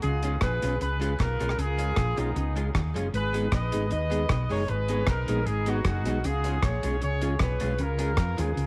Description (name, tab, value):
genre	ska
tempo	155 BPM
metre	4/4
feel	straight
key	unclear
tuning	A4 = 441 Hz
part	warm horn section	melody	0.0-8.7 s	B3 to D#5	-33 LUFS	equal	tape echo
part	clean electric guitar	riff	0.0-8.7 s	F#2 to E#3	-42 LUFS	equal	none
part	hollow-body short-scale fingered electric bass	bass	0.0-8.7 s	F#1 to E#2	-31 LUFS	equal	none
part	deep reggae drum kit	drums	0.0-8.7 s	hi-hat, kick drum, rim click	-32 LUFS	equal	none
part	archtop guitar, miked and amplified	accompaniment	0.2-8.5 s	G#3 to G#4	-40 LUFS	equal	none
part	tonewheel organ	stabs	0.2-8.5 s	G#3 to G#4	-37 LUFS	equal	chorus vibrato, slow rotary speaker, tape echo
part	group handclap	percussion	0.4-8.3 s	none	-51 LUFS	equal	none
room	light reverb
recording	vinyl crackle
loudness	-27 LUFS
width	mono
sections	0.0-8.7 A section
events	none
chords	0.0 C#; 3.1 G#m; 6.2 C#